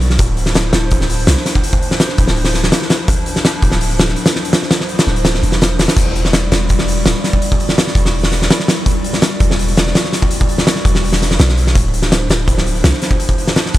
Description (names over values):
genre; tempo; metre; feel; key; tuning
drum and bass, jungle; 166 BPM; 4/4; straight; E phrygian; A4 = 440 Hz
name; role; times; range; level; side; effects
warbly tape-like pad; sustained chords; 0.0-13.8 s; F3 to D5; -23 LUFS; equal; chorus, built-in reverb
long sustained 808-style bass; bass; 0.0-13.8 s; D1 to C2; -16 LUFS; equal; none
oversized low-tuned drum kit; drums; 0.0-13.8 s; crash cymbal, hi-hat, kick drum, snare drum; -13 LUFS; equal; none
room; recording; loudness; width
little or no reverb; transformer saturation; -12 LUFS; side -15 dB against mid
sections
0.0-6.0 A section; 6.0-13.8 A section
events
drop 0.0-6.0, 6.0-13.8; kick drops out 5.3-6.0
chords
0.2 Dm9; 6.0 Em9; 11.8 Dm9